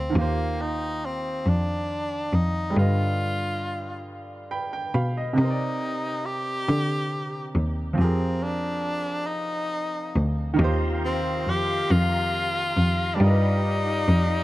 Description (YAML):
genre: slow six-eight R&B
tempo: 46 BPM (dotted quarters)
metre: 6/8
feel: straight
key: Eb major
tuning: A4 = 440 Hz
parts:
  - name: edgy tenor saxophone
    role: melody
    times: 0.0-14.4 s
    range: Bb3 to G4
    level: -28 LUFS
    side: left 1 dB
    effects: tape echo
  - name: bright baby grand piano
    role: accompaniment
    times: 0.0-14.4 s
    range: C3 to B5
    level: -30 LUFS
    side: right 2 dB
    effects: none
  - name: clear cello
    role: bass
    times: 0.0-14.4 s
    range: D2 to D3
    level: -24 LUFS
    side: equal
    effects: none
  - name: tonewheel organ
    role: sustained chords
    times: 10.6-14.4 s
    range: G4 to C6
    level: -35 LUFS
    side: equal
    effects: chorus vibrato, slow rotary speaker
  - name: mellow horn section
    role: stabs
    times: 10.6-14.4 s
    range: C3 to D5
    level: -33 LUFS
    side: left 5 dB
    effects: none
room: light reverb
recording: dark, warm production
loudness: -22 LUFS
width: side -17 dB against mid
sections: 0.0-10.6 A section; 10.6-14.4 B section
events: grand piano fill 4.1-5.4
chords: 0.1 Eb69; 2.8 G7b13; 5.4 Cm9; 8.0 Fm11; 10.6 Eb69; 13.2 G7b13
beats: | 0.14 1.45 | 2.75 4.05 | 5.36 6.66 | 7.97 9.27 | 10.58 11.88 | 13.19